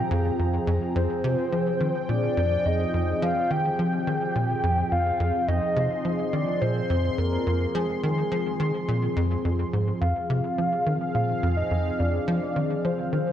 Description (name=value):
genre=ambient, sequencer-driven space music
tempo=106 BPM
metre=4/4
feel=straight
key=F dorian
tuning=A4 = 440 Hz
part: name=soft octave-layered synth lead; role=melody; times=0.0-13.3 s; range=Ab4 to G5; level=-28 LUFS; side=left 1 dB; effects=chorus, analog delay
part: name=sweeping resonant pad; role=sustained chords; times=0.0-13.3 s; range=F3 to C6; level=-29 LUFS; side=equal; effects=chorus
part: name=tight sequencer bass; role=riff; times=0.0-13.2 s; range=F2 to F3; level=-26 LUFS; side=equal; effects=analog chorus, analog delay
part: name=wind-like tuned noise texture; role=texture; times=11.1-13.3 s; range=F5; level=-54 LUFS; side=right 9 dB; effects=none
room=wet plate reverb, RT60 2.6 s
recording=cassette tape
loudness=-23 LUFS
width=side -10 dB against mid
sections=0.0-10.0 A section; 10.0-13.3 B section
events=none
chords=0.0 Fmadd9; 10.0 Fm